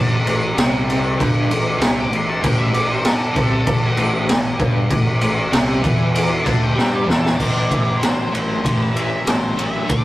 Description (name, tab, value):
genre	blues rock power trio and southern rock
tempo	97 BPM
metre	4/4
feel	straight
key	A minor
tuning	A4 = 441 Hz
part	octave-fuzz lead guitar	melody	0.0-10.0 s	A4 to D6	-26 LUFS	equal	wah, distortion
part	crunchy overdriven guitar	riff	0.0-10.0 s	G2 to A3	-23 LUFS	equal	tremolo
part	fuzz fingered electric bass	bass	0.0-10.0 s	G1 to G2	-26 LUFS	equal	overdrive
part	raw garage drum kit	drums	0.3-10.0 s	crash cymbal, kick drum, ride cymbal, snare drum	-17 LUFS	equal	none
room	light reverb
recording	rough rehearsal-room recording, tube saturation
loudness	-15 LUFS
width	side -16 dB against mid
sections	0.0-7.4 A section; 7.4-10.0 B section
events	drum fill 6.8-7.4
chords	0.0 Am